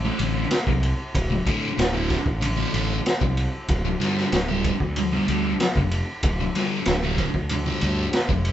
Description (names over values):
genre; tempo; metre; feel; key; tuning
psychedelic rock; 94 BPM; 4/4; straight; unclear; A4 = 439 Hz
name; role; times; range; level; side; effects
thick fuzz guitar; riff; 0.0-8.3 s; D2 to G3; -25 LUFS; equal; distortion, phaser
fuzz fingered electric bass; bass; 0.0-8.5 s; D1 to D2; -26 LUFS; equal; overdrive
raw garage drum kit; drums; 0.2-8.5 s; kick drum, ride cymbal, snare drum; -25 LUFS; equal; none
room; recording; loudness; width
light reverb; band playing live in one room, nothing above 7.9 kHz; -21 LUFS; side -11 dB against mid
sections
0.0-8.5 A section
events
none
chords
0.0 D5; 3.7 G5/D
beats
0.51 | 1.15 1.78 2.42 3.06 | 3.69 4.33 4.96 5.60 | 6.23 6.87 7.50 8.13